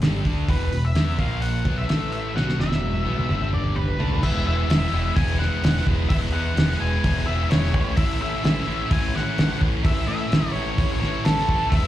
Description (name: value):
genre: classic rock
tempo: 128 BPM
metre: 4/4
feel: straight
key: E mixolydian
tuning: A4 = 440 Hz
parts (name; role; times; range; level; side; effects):
- distorted electric guitar; riff; 0.0-11.9 s; E2 to E4; -27 LUFS; equal; distortion, slapback echo
- growling picked electric bass; bass; 0.0-11.9 s; E1 to A2; -25 LUFS; equal; overdrive
- cloth-damped thuddy drum kit; drums; 0.0-11.8 s; crash cymbal, hi-hat, kick drum, snare drum, toms; -24 LUFS; equal; none
- octave-fuzz lead guitar; melody; 0.5-11.9 s; A4 to G#5; -29 LUFS; left 2 dB; distortion, plate reverb, slapback echo
room: light reverb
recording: live gig heard through the venue's PA, club reverb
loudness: -20 LUFS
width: side -13 dB against mid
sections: 0.0-4.2 A section; 4.2-11.9 B section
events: drum fill 2.4-4.2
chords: 0.0 E5; 1.2 A#5; 1.7 E5; 1.9 A5; 2.4 E5; 3.3 G5; 4.0 Bm7/D; 4.2 E; 7.7 A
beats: 0.02 | 0.48 0.95 1.42 1.89 | 2.36 2.83 3.30 3.77 | 4.23 4.70 5.17 5.64 | 6.11 6.57 7.04 7.51 | 7.98 8.45 8.91 9.38 | 9.85 10.32 10.79 11.26 | 11.73